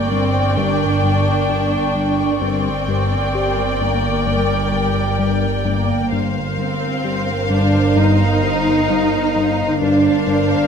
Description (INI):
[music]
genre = cinematic, suspense film score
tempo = 65 BPM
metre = 4/4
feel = straight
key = G minor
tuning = A4 = 440 Hz
[part]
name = warm studio violin section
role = melody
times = 0.0-10.7 s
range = F5 to G5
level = -25 LUFS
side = left 3 dB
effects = none
[part]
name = dark studio viola section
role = accompaniment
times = 0.0-10.7 s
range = Bb4 to D5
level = -23 LUFS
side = left 2 dB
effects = none
[part]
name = dark studio cello section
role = bass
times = 0.0-10.7 s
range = G3 to Eb4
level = -20 LUFS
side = right 2 dB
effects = none
[part]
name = warm studio double bass section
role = bass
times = 0.0-10.7 s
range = G1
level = -23 LUFS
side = right 4 dB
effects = none
[part]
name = organ-like drone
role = drone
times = 0.0-10.7 s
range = G1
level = -26 LUFS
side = equal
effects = ensemble chorus, built-in reverb
[part]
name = clear studio violin section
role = texture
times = 0.0-5.6 s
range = G5 to C#6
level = -29 LUFS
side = left 6 dB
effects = none
[part]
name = fat analog bass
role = riff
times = 0.1-10.5 s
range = G2 to G3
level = -22 LUFS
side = left 4 dB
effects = none
[sound]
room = moderate scoring stage reverb, RT60 1.8 s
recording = none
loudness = -15 LUFS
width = side -7 dB against mid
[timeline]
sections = 0.0-10.7 A section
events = none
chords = 0.0 Gm; 6.1 Bbsus2/G